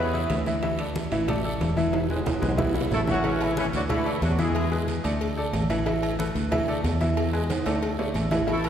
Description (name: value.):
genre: latin, salsa.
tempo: 183 BPM.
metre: 4/4.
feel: straight.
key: unclear.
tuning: A4 = 440 Hz.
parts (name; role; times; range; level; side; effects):
warm horn section; melody; 0.0-0.3, 2.9-4.7, 8.5-8.7 s; E3 to B4; -30 LUFS; equal; none.
bright upright piano; accompaniment; 0.0-8.7 s; E3 to E5; -27 LUFS; right 1 dB; none.
fingered electric bass; bass; 0.0-8.7 s; E1 to E2; -28 LUFS; left 1 dB; none.
congas; percussion; 0.1-8.7 s; none; -31 LUFS; equal; none.
bongos and cowbell; percussion; 0.3-8.7 s; none; -36 LUFS; left 3 dB; none.
guiro; percussion; 0.3-8.7 s; none; -43 LUFS; right 5 dB; none.
timbales and agogo bells; percussion; 0.3-8.7 s; none; -33 LUFS; right 3 dB; none.
room: wet concert hall reverb, RT60 2.2 s.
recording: recorded in a church or concert hall.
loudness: -23 LUFS.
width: side -9 dB against mid.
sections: 0.0-3.2 A section; 3.2-8.7 B section.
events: drum fill 1.9-3.2, 7.5-8.5.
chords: 0.0 Amaj7sus2 (rootless); 0.6 Dsus2; 1.9 E; 3.2 Aadd9; 3.9 Dsus2; 4.6 E7; 5.2 Dsus2; 5.9 Asus2; 6.5 Dsus2; 7.2 E7; 7.8 Dsus2.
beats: 0.30 | 0.63 0.95 1.28 1.61 | 1.94 2.26 2.59 2.92 | 3.25 3.57 3.90 4.23 | 4.55 4.88 5.21 5.54 | 5.86 6.19 6.52 6.85 | 7.17 7.50 7.83 8.15 | 8.48.